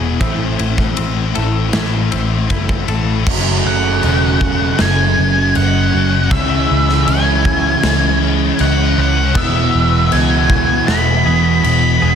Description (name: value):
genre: rock, shoegaze and dream pop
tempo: 79 BPM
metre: 4/4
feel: straight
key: unclear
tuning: A4 = 442 Hz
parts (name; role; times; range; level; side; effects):
- direct-recorded clean electric guitar; arpeggios; 0.0-3.3, 9.3-12.2 s; F#3 to A4; -26 LUFS; left 7 dB; lush chorus, tape echo
- overdriven semi-hollow guitar; riff; 0.0-12.2 s; E2 to F#4; -20 LUFS; right 14 dB; reverse reverb
- thick fuzz guitar; riff; 0.0-12.2 s; E2 to C#4; -19 LUFS; left 10 dB; distortion, ensemble chorus
- vintage muted picked electric bass; bass; 0.0-12.2 s; E1 to C#2; -17 LUFS; equal; none
- big rock drum kit; drums; 0.2-11.8 s; crash cymbal, kick drum, ride cymbal, snare drum; -20 LUFS; equal; none
- octave-fuzz lead guitar; melody; 3.7-12.2 s; E5 to B5; -17 LUFS; equal; distortion, tape echo
room: small room ambience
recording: dense, heavily limited modern master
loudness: -12 LUFS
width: side -8 dB against mid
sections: 0.0-3.3 A section; 3.3-12.2 B section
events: none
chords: 0.2 Am; 3.3 F#m7; 6.3 C#m; 9.4 E